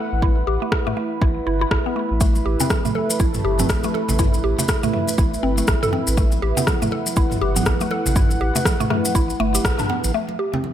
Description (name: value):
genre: afro house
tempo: 121 BPM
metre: 4/4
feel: swing 60% on 16ths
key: unclear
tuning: A4 = 440 Hz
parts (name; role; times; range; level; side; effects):
- dark analog pad; sustained chords; 0.0-10.7 s; A3 to F#5; -26 LUFS; right 1 dB; chorus, sidechain pumping
- mallet-like synth pluck; arpeggios; 0.0-10.6 s; A3 to A4; -24 LUFS; left 1 dB; chorus, phaser, sidechain pumping, ping-pong delay
- warm sub bass; bass; 0.1-10.1 s; G1 to A2; -24 LUFS; equal; sidechain pumping
- electronic kick drum; drums; 0.2-9.8 s; none; -20 LUFS; equal; overdrive
- deep house drum kit; drums; 0.7-10.7 s; hi-hat, rim click, toms; -25 LUFS; equal; overdrive, low-pass filter on snare, low-pass filter on toms, low-pass filter on hats, low-pass filter on room
- maracas; percussion; 2.2-10.1 s; none; -28 LUFS; left 3 dB; none
- congas; percussion; 2.4-10.7 s; none; -29 LUFS; right 4 dB; none
room: light reverb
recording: none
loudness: -17 LUFS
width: side -10 dB against mid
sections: 0.0-10.1 A section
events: band accent 9.6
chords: 0.0 Em; 2.2 A7sus2; 6.2 Em; 10.1 Am9